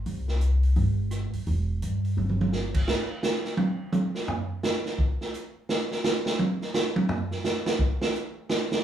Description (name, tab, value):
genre	modal jazz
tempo	171 BPM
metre	4/4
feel	swing 63% on 8ths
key	unclear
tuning	A4 = 441 Hz
part	upright bass	bass	0.0-2.8 s	E1 to G2	-24 LUFS	equal	none
part	vintage drum kit	drums	0.1-8.8 s	crash cymbal, hi-hat, kick drum, rim click, snare drum, toms	-25 LUFS	right 1 dB	none
room	wet studio reverb, RT60 0.6 s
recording	heard from further back in the room, studio reverb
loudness	-24 LUFS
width	side -10 dB against mid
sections	0.0-2.9 A section; 2.9-8.8 B section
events	drum fill 2.2-2.5; drum solo 2.9-8.8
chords	none